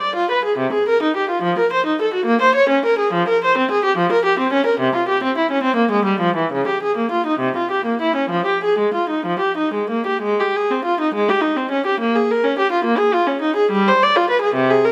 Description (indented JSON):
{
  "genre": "classical, baroque-style suite movement for unaccompanied viola",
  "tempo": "58-74 BPM (dotted quarters)",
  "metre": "6/8",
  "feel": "rubato",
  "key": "F minor",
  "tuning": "A4 = 440 Hz",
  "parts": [
    { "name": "warm viola", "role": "solo", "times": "0.0-14.9 s", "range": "C3 to D5", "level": "-18 LUFS", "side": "equal", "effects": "none" }
  ],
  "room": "moderate recital hall reverb, RT60 1.4 s",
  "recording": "close, detailed microphones",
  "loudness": "-18 LUFS",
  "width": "mono",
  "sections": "0.0-10.2 A section; 10.2-14.9 A section",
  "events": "none",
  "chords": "none",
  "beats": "0.58 | 1.43 2.26 | 3.14 3.97 | 4.79 5.62 | 6.51 7.41 | 8.32 9.26 | 10.24 11.13 | 12.00 12.84 | 13.71 14.56"
}